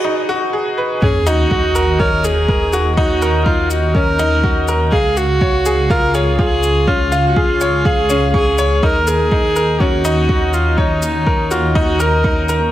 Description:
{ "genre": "piano and strings electronica", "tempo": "123 BPM", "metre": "4/4", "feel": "straight", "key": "Eb minor", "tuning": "A4 = 443 Hz", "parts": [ { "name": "dark viola", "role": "melody", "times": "0.0-12.5 s", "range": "Eb4 to Bb4", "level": "-18 LUFS", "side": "right 1 dB", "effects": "none" }, { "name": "bright concert grand piano", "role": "riff", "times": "0.0-12.7 s", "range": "Db4 to Db6", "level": "-18 LUFS", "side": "left 1 dB", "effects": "digital delay" }, { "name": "dark detuned saw bass", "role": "bass", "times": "0.0-12.7 s", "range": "Db2 to Eb2", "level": "-19 LUFS", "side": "equal", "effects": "sidechain pumping, high-pass filter" }, { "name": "riser and sub drop", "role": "sound effects", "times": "0.0-3.0 s", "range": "none", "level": "-24 LUFS", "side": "equal", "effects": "none" }, { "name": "electronic kick drum", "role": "drums", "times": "1.0-12.3 s", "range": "none", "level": "-18 LUFS", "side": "equal", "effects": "small room ambience" }, { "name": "shaker", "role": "drums", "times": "1.3-12.6 s", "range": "none", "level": "-31 LUFS", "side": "left 5 dB", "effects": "small room ambience" } ], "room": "light reverb, small room reverb", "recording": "none", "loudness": "-12 LUFS", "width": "side -13 dB against mid", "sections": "0.0-1.0 A section; 1.0-12.7 B section", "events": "build-up 0.0-1.0; break 0.0-1.0; drop 1.0-12.7; impact 1.0-3.0", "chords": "0.0 Abm7; 1.0 Ebm7; 4.9 Db; 8.8 Ebm7", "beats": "0.05 0.54 | 1.02 1.51 2.00 2.49 | 2.97 3.46 3.95 4.44 | 4.92 5.41 5.90 6.39 | 6.88 7.36 7.85 8.34 | 8.83 9.31 9.80 10.29 | 10.78 11.27 11.75 12.24" }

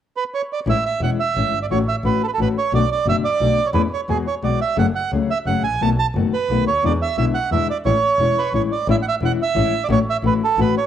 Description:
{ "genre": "tango", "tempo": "176 BPM", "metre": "3/4", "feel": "rubato", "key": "A major", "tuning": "A4 = 444 Hz", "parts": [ { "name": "bandoneon", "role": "melody", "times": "0.2-10.8 s", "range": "G#4 to A5", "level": "-20 LUFS", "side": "right 6 dB", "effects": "cassette tape" }, { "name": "nylon-string guitar", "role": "accompaniment", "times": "0.7-10.8 s", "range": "B2 to G#4", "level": "-22 LUFS", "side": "left 8 dB", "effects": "cassette tape" }, { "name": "clear double bass", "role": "bass", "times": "0.7-10.7 s", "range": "E1 to E2", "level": "-23 LUFS", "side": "equal", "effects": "none" } ], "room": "moderate spring reverb, RT60 2.0 s, studio reverb", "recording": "home recording on cassette", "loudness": "-17 LUFS", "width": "side -10 dB against mid", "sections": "0.7-8.9 A section; 8.9-10.9 A section", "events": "none", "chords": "0.0 N.C.; 0.7 Amaj7; 1.7 F#m7/A; 2.7 Bm7; 3.7 A/E; 4.1 Eadd9; 4.8 F#madd9; 5.8 B7; 6.8 E7; 7.8 Amaj7; 9.9 F#m7/A", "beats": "0.32 | 0.67 1.01 1.35 | 1.70 2.04 2.38 | 2.72 3.06 3.40 | 3.75 4.09 4.43 | 4.78 5.12 5.46 | 5.81 6.15 6.49 | 6.83 7.17 7.51 | 7.85 8.19 8.53 | 8.88 9.22 9.56 | 9.90 10.24 10.58" }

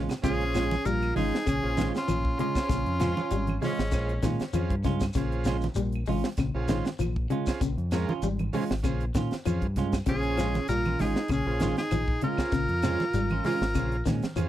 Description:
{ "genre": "afrobeat", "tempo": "98 BPM", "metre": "4/4", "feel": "swing 54% on 16ths", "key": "Bb dorian", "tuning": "A4 = 440 Hz", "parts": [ { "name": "combo organ", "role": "accompaniment", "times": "0.0-14.5 s", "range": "Db4 to C5", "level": "-35 LUFS", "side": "right 5 dB", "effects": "none" }, { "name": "electric guitar at the edge of break-up", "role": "arpeggios", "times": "0.0-14.5 s", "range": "Db3 to Ab3", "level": "-33 LUFS", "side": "left 7 dB", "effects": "wide subtle chorus" }, { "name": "clean electric guitar", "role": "stabs", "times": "0.0-14.3 s", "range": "Ab3 to F4", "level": "-33 LUFS", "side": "right 8 dB", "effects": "none" }, { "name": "deep dub fingered electric bass", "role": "bass", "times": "0.0-14.5 s", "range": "Ab1 to Bb2", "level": "-30 LUFS", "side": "equal", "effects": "none" }, { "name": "tight funk drum kit", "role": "drums", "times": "0.1-14.5 s", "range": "hi-hat, kick drum, snare drum", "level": "-32 LUFS", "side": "equal", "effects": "none" }, { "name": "claves", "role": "percussion", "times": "0.1-14.5 s", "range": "none", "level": "-49 LUFS", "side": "right 9 dB", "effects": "none" }, { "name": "congas", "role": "percussion", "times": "0.1-14.5 s", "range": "none", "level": "-34 LUFS", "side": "right 3 dB", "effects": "none" }, { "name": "shekere", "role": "percussion", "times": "0.1-14.5 s", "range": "none", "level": "-38 LUFS", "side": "left 2 dB", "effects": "none" }, { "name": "edgy tenor saxophone", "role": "melody", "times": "0.2-4.2, 10.1-14.0 s", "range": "Db4 to Bb4", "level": "-32 LUFS", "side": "left 2 dB", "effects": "none" }, { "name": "warm alto saxophone", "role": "second line", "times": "0.2-4.2, 10.1-14.0 s", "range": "Ab3 to F4", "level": "-33 LUFS", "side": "right 4 dB", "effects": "none" } ], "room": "little or no reverb", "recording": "dry, close 1970s-style studio recording", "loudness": "-25 LUFS", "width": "side -12 dB against mid", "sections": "0.2-14.5 A section", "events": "drum fill 0.0", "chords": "0.2 Bbm7", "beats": "| 0.24 0.85 1.47 2.08 | 2.70 3.31 3.93 4.54 | 5.16 5.78 6.39 7.00 | 7.62 8.23 8.85 9.46 | 10.07 10.69 11.30 11.91 | 12.53 13.14 13.75 14.37" }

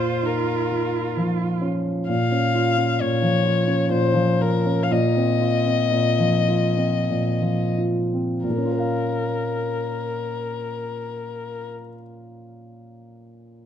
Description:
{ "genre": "classical, slow romantic movement for piano trio", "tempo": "40-67 BPM", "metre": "3/4", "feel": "rubato", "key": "Bb minor", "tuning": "A4 = 440 Hz", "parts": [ { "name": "dark violin", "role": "melody", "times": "0.0-11.7 s", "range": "Bb4 to F5", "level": "-25 LUFS", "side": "left 6 dB", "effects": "none" }, { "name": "warm cello", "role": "second line", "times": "0.0-1.6 s", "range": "F4", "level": "-28 LUFS", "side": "right 11 dB", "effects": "none" }, { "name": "dark baby grand piano", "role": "accompaniment", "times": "0.0-13.7 s", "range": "Bb2 to F5", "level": "-22 LUFS", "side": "equal", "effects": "none" } ], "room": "moderate recital hall reverb, RT60 1.7 s", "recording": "close, detailed microphones", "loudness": "-20 LUFS", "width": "side -9 dB against mid", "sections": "0.0-2.1 A section; 2.1-8.4 B section; 8.4-12.0 C section", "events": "slowing down 0.7-8.4", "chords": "0.0 Bbm; 4.9 F5/Bb; 8.4 Bbm", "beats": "0.24 1.16 | 2.09 3.01 3.91 | 4.90 5.91 7.07 | 8.44 9.63 10.80" }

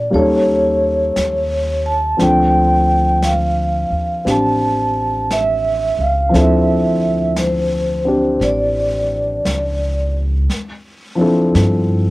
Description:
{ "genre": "jazz ballad", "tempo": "58 BPM", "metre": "4/4", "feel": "swing 66% on 8ths", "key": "D minor", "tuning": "A4 = 436 Hz", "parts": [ { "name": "vibraphone with medium mallets", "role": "melody", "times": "0.0-10.1 s", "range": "C5 to A5", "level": "-17 LUFS", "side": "right 1 dB", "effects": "none" }, { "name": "warm grand piano", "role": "accompaniment", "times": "0.0-12.1 s", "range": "F3 to A4", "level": "-18 LUFS", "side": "left 1 dB", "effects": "cassette tape" }, { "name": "upright bass", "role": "bass", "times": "0.0-12.1 s", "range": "A1 to Bb2", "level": "-20 LUFS", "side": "equal", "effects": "none" }, { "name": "jazz brush drum kit", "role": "drums", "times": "0.1-12.1 s", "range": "brushed snare drum, hi-hat, snare drum", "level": "-28 LUFS", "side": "equal", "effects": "cassette tape" } ], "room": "light reverb", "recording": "home recording on cassette", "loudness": "-14 LUFS", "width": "side -19 dB against mid", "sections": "0.0-10.5 A section; 10.5-12.1 B section", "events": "upright bass solo 10.5-12.1", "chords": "0.1 Eb7#11; 2.2 Dm9", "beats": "0.13 1.16 | 2.19 3.22 4.25 5.29 | 6.32 7.36 8.40 9.45 | 10.49 11.54" }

